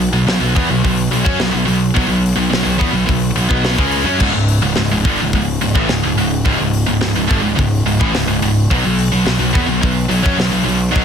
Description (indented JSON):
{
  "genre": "heavy metal",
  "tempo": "107 BPM",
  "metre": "4/4",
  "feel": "straight",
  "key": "unclear",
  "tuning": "A4 = 439 Hz",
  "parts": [
    { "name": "scooped high-gain guitar", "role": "riff", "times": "0.0-11.0 s", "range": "C#2 to C#4", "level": "-15 LUFS", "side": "equal", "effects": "distortion" },
    { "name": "fuzz picked electric bass", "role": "bass", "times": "0.0-11.0 s", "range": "C#1 to F#2", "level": "-20 LUFS", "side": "equal", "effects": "overdrive" },
    { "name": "tight metal drum kit", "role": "drums", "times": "0.0-11.0 s", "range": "crash cymbal, hi-hat, kick drum, snare drum", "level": "-20 LUFS", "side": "equal", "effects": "none" }
  ],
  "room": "studio ambience",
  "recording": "dense, heavily limited modern master",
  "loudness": "-13 LUFS",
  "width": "side -7 dB against mid",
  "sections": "0.0-11.0 A section",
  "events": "none",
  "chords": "0.0 B5; 4.2 C#5; 8.7 B5",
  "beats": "0.28 0.84 1.40 | 1.97 2.53 3.09 3.65 | 4.21 4.77 5.33 5.90 | 6.46 7.02 7.58 8.14 | 8.70 9.26 9.83 10.39 | 10.95"
}